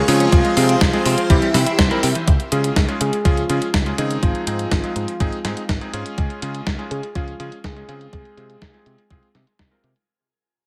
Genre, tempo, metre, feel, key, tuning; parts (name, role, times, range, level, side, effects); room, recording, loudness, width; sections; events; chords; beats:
italo disco; 123 BPM; 4/4; straight; A4 = 440 Hz
soft octave-layered synth lead; melody; 0.0-9.6 s; Eb4 to Ab4; -27 LUFS; equal; chorus, delay, shimmer reverb
phased string machine; sustained chords; 0.0-2.3 s; G4 to Db6; -29 LUFS; equal; ensemble chorus, phaser, shimmer reverb
bright electric grand piano; stabs; 0.0-9.9 s; G3 to Bb4; -27 LUFS; equal; low-pass filter, tape echo, shimmer reverb
direct-recorded clean electric guitar; arpeggios; 0.1-2.3 s; E3 to C5; -30 LUFS; equal; tape echo, shimmer reverb
picked electric bass; bass; 0.1-9.9 s; Ab1 to Db3; -25 LUFS; equal
clean 12-bit digital drum machine; drums; 0.1-10.1 s; hi-hat, snare drum; -25 LUFS; equal; low-pass filter on hats, small room ambience, low-pass filter on snare, gated reverb
electronic kick drum; drums; 0.3-9.7 s; -21 LUFS; equal; small room ambience
light reverb, digital ambience; -19 LUFS; mono
0.0-2.3 A section; 2.3-10.1 B section
band accent 1.8; fade-out 2.3-10.1
0.3 Fm/C; 1.3 C; 2.3 Db; 4.2 Ab; 6.2 Db; 8.1 Fm/C
| 0.32 0.81 1.30 1.79 | 2.28 2.76 3.25 3.74 | 4.23 4.71 5.20 5.69 | 6.18 6.67 7.15 7.64 | 8.13 8.62 9.11 9.59